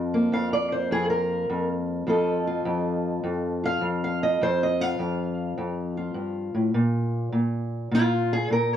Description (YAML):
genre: acoustic country blues, solo or duo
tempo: 103 BPM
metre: 4/4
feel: swing 67% on 8ths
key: F mixolydian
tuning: A4 = 440 Hz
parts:
  - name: fingerpicked steel-string acoustic guitar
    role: solo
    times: 0.0-8.8 s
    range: F2 to F5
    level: -23 LUFS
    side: equal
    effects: none
room: moderate studio reverb, RT60 0.8 s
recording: dark, warm production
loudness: -23 LUFS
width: side -10 dB against mid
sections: 0.0-8.8 A section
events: steel-string acoustic guitar solo 0.0-8.8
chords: 0.0 Bb5; 2.1 F7; 6.7 N.C.